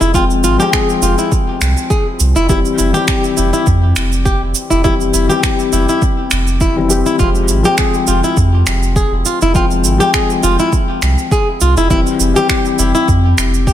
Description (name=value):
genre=organic downtempo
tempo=102 BPM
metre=4/4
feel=swing 54% on 16ths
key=F harmonic minor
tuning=A4 = 440 Hz
part: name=felt-muted upright piano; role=accompaniment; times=0.0-13.7 s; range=E3 to G5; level=-17 LUFS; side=left 5 dB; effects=sidechain pumping, ping-pong delay
part: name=flamenco guitar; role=arpeggios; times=0.0-13.7 s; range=E4 to Ab4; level=-17 LUFS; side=equal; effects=ping-pong delay
part: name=warm sub bass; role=bass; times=0.0-13.7 s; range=F1 to F2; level=-15 LUFS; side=right 1 dB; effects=sidechain pumping
part: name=electronic cabasa and finger snaps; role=drums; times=0.0-13.7 s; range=none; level=-20 LUFS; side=right 4 dB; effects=overdrive, soft clipping on snare
part: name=electronic kick drum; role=drums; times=0.1-13.7 s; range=none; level=-16 LUFS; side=right 1 dB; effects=none
room=light reverb, digital ambience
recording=dense, heavily limited modern master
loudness=-11 LUFS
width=side -11 dB against mid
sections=0.0-13.7 A section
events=none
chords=0.0 Fmadd9; 2.5 C/F; 7.2 Fmadd9; 11.9 C/F